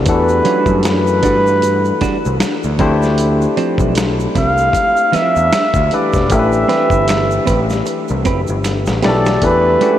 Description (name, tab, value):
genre	R&B, neo-soul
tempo	77 BPM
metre	4/4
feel	swing 56% on 16ths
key	E minor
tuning	A4 = 441 Hz
part	barky tine electric piano	accompaniment	0.0-10.0 s	E3 to D5	-18 LUFS	left 3 dB	overdrive
part	overdriven picked electric bass	bass	0.0-9.8 s	E1 to G2	-18 LUFS	equal	none
part	breathy flugelhorn	melody	0.1-10.0 s	A4 to F5	-17 LUFS	right 1 dB	none
part	dusty soul sampler-style drum kit	drums	0.1-10.0 s	hi-hat, kick drum, snare drum	-21 LUFS	equal	none
part	tube shaker and finger snaps	percussion	0.1-9.4 s	none	-33 LUFS	right 7 dB	none
part	semi-hollow electric guitar	second line	0.5-10.0 s	F3 to B4	-23 LUFS	right 5 dB	none
room	wet huge ambient reverb, RT60 8.0 s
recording	dreamy mix soaked in reverb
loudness	-12 LUFS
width	side -11 dB against mid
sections	0.0-9.4 A section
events	drum fill 8.6-9.4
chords	0.0 Em9; 2.8 Dm9; 6.3 Am9; 9.4 Em11